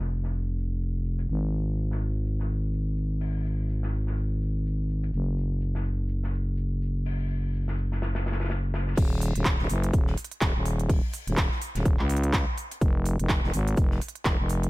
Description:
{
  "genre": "bass house",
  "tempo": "125 BPM",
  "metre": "4/4",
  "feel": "swing 58% on 16ths",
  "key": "unclear",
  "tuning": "A4 = 440 Hz",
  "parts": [
    { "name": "growling FM bass", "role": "bass", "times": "0.0-14.7 s", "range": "Eb1 to Db2", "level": "-26 LUFS", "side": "equal", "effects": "tube saturation, sidechain pumping" },
    { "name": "modern studio drum kit", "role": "drums", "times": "0.1-14.6 s", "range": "hi-hat, shaker, snare drum", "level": "-40 LUFS", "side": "left 2 dB", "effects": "high-pass filter on hats, low-pass filter on hats, high-pass filter on snare, low-pass filter on snare, high-pass filter on perc, low-pass filter on perc, high-pass filter on room, low-pass filter on room" },
    { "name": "big-room dance drum kit", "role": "drums", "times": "9.0-14.7 s", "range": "crash cymbal, handclaps, hi-hat", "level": "-32 LUFS", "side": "right 1 dB", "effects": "overdrive, low-pass filter on hats, low-pass filter on cymbals, low-pass filter on snare, low-pass filter on room" },
    { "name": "electronic kick drum", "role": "drums", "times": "9.0-14.4 s", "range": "none", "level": "-25 LUFS", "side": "equal", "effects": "none" }
  ],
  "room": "little or no reverb",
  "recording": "none",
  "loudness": "-25 LUFS",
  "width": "side -20 dB against mid",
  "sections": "0.0-9.0 A section; 9.0-14.7 B section",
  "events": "drop 9.0-14.7",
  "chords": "none",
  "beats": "0.34 0.81 | 1.29 1.77 2.25 2.73 | 3.21 3.69 4.17 4.66 | 5.13 5.62 6.09 6.58 | 7.05 7.54 8.02 8.49 | 8.97 9.46 9.94 10.41 | 10.89 11.38 11.86 12.34 | 12.81 13.29 13.78 14.26"
}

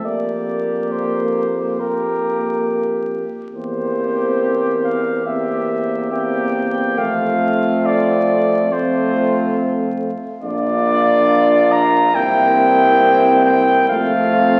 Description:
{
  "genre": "classical, brass quintet",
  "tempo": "69 BPM",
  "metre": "4/4",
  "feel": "straight",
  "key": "F major",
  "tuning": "A4 = 440 Hz",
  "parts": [
    { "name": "dark cornet", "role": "melody", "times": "0.0-14.6 s", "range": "Bb4 to Bb5", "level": "-20 LUFS", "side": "equal", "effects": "none" },
    { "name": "warm flugelhorn", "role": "second line", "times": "0.0-14.6 s", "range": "E4 to G4", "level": "-27 LUFS", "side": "equal", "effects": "none" },
    { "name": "warm euphonium", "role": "accompaniment", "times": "0.0-14.6 s", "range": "A3 to Bb3", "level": "-23 LUFS", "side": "equal", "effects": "none" },
    { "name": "warm French horn", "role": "accompaniment", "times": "0.1-14.6 s", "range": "Bb3 to D4", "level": "-26 LUFS", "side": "equal", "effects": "none" },
    { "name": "clear tuba", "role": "bass", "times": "0.1-14.6 s", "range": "Bb1 to F2", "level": "-28 LUFS", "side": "equal", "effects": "none" }
  ],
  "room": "wet scoring stage reverb, RT60 1.9 s",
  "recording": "very old 78 rpm record, vinyl crackle",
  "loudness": "-17 LUFS",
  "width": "mono",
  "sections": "0.0-14.6 A section",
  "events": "none",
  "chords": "0.1 Gm7/F; 3.5 C7/E; 7.0 F; 10.4 Bb; 12.2 C7; 13.9 F",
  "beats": "| 0.05 0.93 1.80 2.67 | 3.54 4.40 5.26 6.12 | 6.98 7.85 8.72 9.57 | 10.43 11.29 12.15 13.02 | 13.89"
}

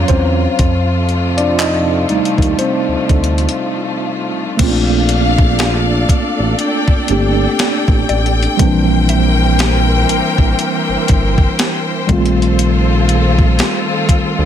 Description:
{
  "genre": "contemporary R&B",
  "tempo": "60 BPM",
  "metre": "4/4",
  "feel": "swing 58% on 16ths",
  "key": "Bb major",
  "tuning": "A4 = 442 Hz",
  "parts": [
    { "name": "mellow tine electric piano", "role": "accompaniment", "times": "0.0-14.5 s", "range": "Eb3 to Eb5", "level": "-17 LUFS", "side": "right 2 dB", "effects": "medium stereo tremolo" },
    { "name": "warm studio string section", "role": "sustained chords", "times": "0.0-14.5 s", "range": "C3 to G5", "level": "-19 LUFS", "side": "left 3 dB", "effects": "none" },
    { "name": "smooth synth bass", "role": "bass", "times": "0.0-14.5 s", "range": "G1 to F2", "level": "-16 LUFS", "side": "equal", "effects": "none" },
    { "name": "gated 80s digital drum machine", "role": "drums", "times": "0.1-14.4 s", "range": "crash cymbal, handclaps, hi-hat, kick drum, snare drum", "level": "-15 LUFS", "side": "equal", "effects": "gated reverb, gated reverb snare" },
    { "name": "mallet-like synth pluck", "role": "texture", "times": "5.6-12.6 s", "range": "D5 to G5", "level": "-27 LUFS", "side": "left 5 dB", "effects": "none" }
  ],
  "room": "little or no reverb",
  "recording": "none",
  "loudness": "-12 LUFS",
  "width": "side -10 dB against mid",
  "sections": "0.0-4.6 A section; 4.6-14.5 B section",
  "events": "tine electric piano solo 0.0-4.6; break 3.6-4.6",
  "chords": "0.0 Ebm7 (rootless); 0.6 F7; 4.6 Bbmaj7; 8.6 C7; 12.1 F7/Bb",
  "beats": "| 0.59 1.59 2.59 3.59 | 4.59 5.59 6.59 7.59 | 8.59 9.59 10.59 11.59 | 12.59 13.59"
}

